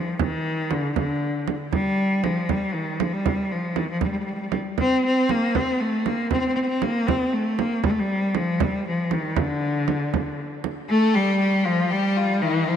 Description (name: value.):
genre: Persian modal ensemble.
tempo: 78 BPM (dotted quarters).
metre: 6/8.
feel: straight.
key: unclear.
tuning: A4 = 440 Hz.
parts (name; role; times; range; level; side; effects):
clear cello; melody; 0.0-12.8 s; D3 to C4; -22 LUFS; left 1 dB; tape echo.
frame drum; percussion; 0.2-10.8 s; none; -27 LUFS; right 7 dB; none.
warm violin; second line; 10.9-12.8 s; Eb4+44c to A4; -26 LUFS; left 11 dB; none.
room: moderate plate reverb, RT60 3.2 s.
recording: 1960s-style stereo with parts hard left and right.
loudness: -21 LUFS.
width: side -8 dB against mid.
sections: 0.0-10.9 A section; 10.9-12.8 B section.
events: none.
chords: none.